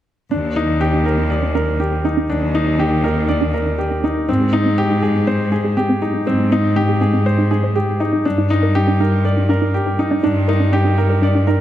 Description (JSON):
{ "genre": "electronica", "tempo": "121 BPM", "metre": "4/4", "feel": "straight", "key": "Eb major", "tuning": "A4 = 439 Hz", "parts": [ { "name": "warbly dusty pluck", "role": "arpeggios", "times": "0.3-11.6 s", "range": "C4 to Eb5", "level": "-22 LUFS", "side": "right 1 dB", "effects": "chorus, ping-pong delay" }, { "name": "warm baby grand piano", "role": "riff", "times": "0.3-11.6 s", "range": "C4 to D5", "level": "-19 LUFS", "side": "left 1 dB", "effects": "ping-pong delay" }, { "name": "rich studio cello section", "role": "bass", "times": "0.3-11.6 s", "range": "Eb2 to Ab2", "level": "-18 LUFS", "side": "equal", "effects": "none" } ], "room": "moderate recital hall reverb, RT60 1.6 s, small room ambience", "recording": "none", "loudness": "-15 LUFS", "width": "side -12 dB against mid", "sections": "0.3-11.6 A section", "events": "filter sweep on cello section 0.3-11.6; filter sweep on synth arpeggio sound 0.3-11.6", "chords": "0.3 Ebmaj7; 4.3 Abmaj7; 8.3 Ebmaj7/G", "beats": "| 0.32 0.81 1.31 1.81 | 2.30 2.80 3.29 3.79 | 4.29 4.78 5.28 5.77 | 6.27 6.76 7.26 7.76 | 8.25 8.75 9.24 9.74 | 10.23 10.73 11.23" }